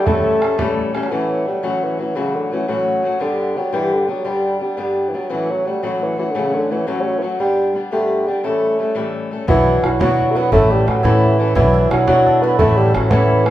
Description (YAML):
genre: celtic folk, Celtic jig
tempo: 115 BPM (dotted quarters)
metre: 6/8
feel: straight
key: A mixolydian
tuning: A4 = 440 Hz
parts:
  - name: dark bassoon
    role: melody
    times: 0.0-13.5 s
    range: C#3 to B3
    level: -18 LUFS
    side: right 1 dB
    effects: none
  - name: cimbalom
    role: second line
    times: 0.0-3.0, 9.5-13.5 s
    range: C#4 to B4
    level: -23 LUFS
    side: right 5 dB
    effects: none
  - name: mellow wooden flute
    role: second line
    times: 0.0-0.8 s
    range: A5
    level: -28 LUFS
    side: left 3 dB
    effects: none
  - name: fingerpicked old ladder-braced acoustic guitar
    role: accompaniment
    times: 0.0-13.5 s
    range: G2 to A4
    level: -20 LUFS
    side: left 2 dB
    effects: none
  - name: bodhran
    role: percussion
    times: 0.1-1.1, 9.5-13.5 s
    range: none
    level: -22 LUFS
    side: right 1 dB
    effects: none
  - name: upright bass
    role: bass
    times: 9.5-13.5 s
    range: A1 to B2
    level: -18 LUFS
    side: equal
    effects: none
room: wet large studio reverb, RT60 0.8 s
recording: band playing live in one room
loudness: -15 LUFS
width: side -13 dB against mid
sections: 0.0-1.1 A section; 1.1-9.5 A section; 9.5-13.5 B section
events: none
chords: 0.1 A7; 1.1 A6; 3.2 G; 5.3 A6; 7.4 G; 8.4 A7; 9.5 Bm; 10.5 A; 11.6 Bm; 12.6 A